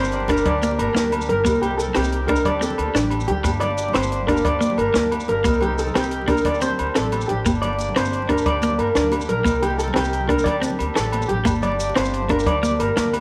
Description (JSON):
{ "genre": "highlife guitar band", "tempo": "120 BPM (dotted quarters)", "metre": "12/8", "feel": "straight", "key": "G minor", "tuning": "A4 = 439 Hz", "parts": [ { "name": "clean electric guitar", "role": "accompaniment", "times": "0.0-13.2 s", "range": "Bb3 to D4", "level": "-26 LUFS", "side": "equal", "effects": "warbly pitch drift" }, { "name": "accordion", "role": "sustained chords", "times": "0.0-13.2 s", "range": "Bb3 to Bb4", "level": "-34 LUFS", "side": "equal", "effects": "light tremolo tuning" }, { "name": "electric guitar at the edge of break-up", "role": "arpeggios", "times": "0.0-13.1 s", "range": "G4 to D5", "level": "-24 LUFS", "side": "equal", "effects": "harmonic tremolo, tape echo" }, { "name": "upright bass", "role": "bass", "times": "0.0-13.2 s", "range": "G1 to D2", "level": "-29 LUFS", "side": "equal", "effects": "none" }, { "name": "congas", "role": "percussion", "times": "0.0-13.2 s", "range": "none", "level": "-33 LUFS", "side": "equal", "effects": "none" }, { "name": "maracas", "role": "percussion", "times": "0.0-13.1 s", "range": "none", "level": "-39 LUFS", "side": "equal", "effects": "none" }, { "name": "compact cocktail drum kit", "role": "drums", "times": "0.1-13.2 s", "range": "hi-hat, kick drum, snare drum", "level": "-29 LUFS", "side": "equal", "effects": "none" }, { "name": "agogo bells", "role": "percussion", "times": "0.3-13.2 s", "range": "none", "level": "-33 LUFS", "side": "equal", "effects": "none" } ], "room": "moderate echo chamber reverb, RT60 2.0 s", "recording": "none", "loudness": "-20 LUFS", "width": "mono", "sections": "0.0-13.2 A section", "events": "none", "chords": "0.0 Gm; 1.5 Cm7; 2.5 D7sus4; 3.5 Gm; 5.5 Cm7; 6.5 D7sus4; 7.5 Gm; 9.5 Cm7; 10.5 D7sus4; 11.5 Gm", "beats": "0.46 0.95 | 1.46 1.95 2.45 2.95 | 3.45 3.95 4.45 4.95 | 5.46 5.96 6.46 6.96 | 7.46 7.96 8.46 8.96 | 9.46 9.96 10.46 10.96 | 11.46 11.97 12.47 12.97" }